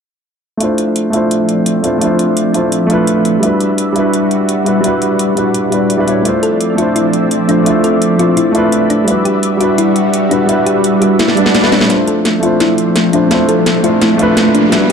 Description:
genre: liquid drum and bass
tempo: 170 BPM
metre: 4/4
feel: straight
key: D dorian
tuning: A4 = 440 Hz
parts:
  - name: dark grand piano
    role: accompaniment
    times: 0.6-14.9 s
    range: G3 to C#5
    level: -12 LUFS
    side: equal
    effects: low-pass filter, dub echo
  - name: lush unison pad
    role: sustained chords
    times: 0.9-14.9 s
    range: F3 to E5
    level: -17 LUFS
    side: equal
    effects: chorus, phaser
  - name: drum and bass drum kit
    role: drums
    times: 0.6-14.9 s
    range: hi-hat, snare drum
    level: -17 LUFS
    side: equal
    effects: none
  - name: thumb-piano-like synth pluck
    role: arpeggios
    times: 6.4-14.9 s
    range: D4 to A4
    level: -18 LUFS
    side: left 4 dB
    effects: chorus, dub echo
  - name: swell and riser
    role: sound effects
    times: 11.3-14.9 s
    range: none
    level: -20 LUFS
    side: right 1 dB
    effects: none
room: moderate scoring stage reverb, RT60 1.9 s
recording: dark, warm production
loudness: -10 LUFS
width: side -6 dB against mid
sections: 0.6-11.9 A section; 11.9-14.9 B section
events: filter sweep on analog synth pad 0.6-11.9, 11.9-14.9; drum fill 11.2-11.9, 11.9-14.9; swell 11.3-11.9; build-up 11.9-14.9; riser 11.9-14.9; filter sweep on grand piano 11.9-14.9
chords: 0.6 Dm9; 3.4 Em9; 6.3 Dm9; 9.1 Em9; 11.9 Dm9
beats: | 0.60 0.96 1.31 1.66 | 2.02 2.37 2.72 3.08 | 3.43 3.78 4.13 4.49 | 4.84 5.19 5.55 5.90 | 6.25 6.61 6.96 7.31 | 7.66 8.02 8.37 8.72 | 9.08 9.43 9.78 10.13 | 10.49 10.84 11.19 11.55 | 11.90 12.25 12.61 12.96 | 13.31 13.66 14.02 14.37 | 14.72

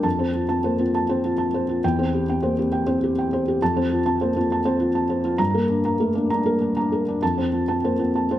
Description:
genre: neoclassical minimalist piano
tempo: 67 BPM (dotted quarters)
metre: 6/8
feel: rubato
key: F major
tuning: A4 = 440 Hz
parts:
  - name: felt-muted upright piano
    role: solo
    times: 0.0-8.4 s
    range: E2 to Bb5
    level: -20 LUFS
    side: equal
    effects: slapback echo
room: light reverb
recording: close, detailed microphones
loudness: -20 LUFS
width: side -13 dB against mid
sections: 0.0-8.4 A section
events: none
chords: 0.0 F; 1.8 C/E; 3.6 F; 5.4 Gm; 7.2 F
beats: | 0.05 0.94 | 1.83 2.72 | 3.61 4.49 | 5.39 6.30 | 7.22 8.15

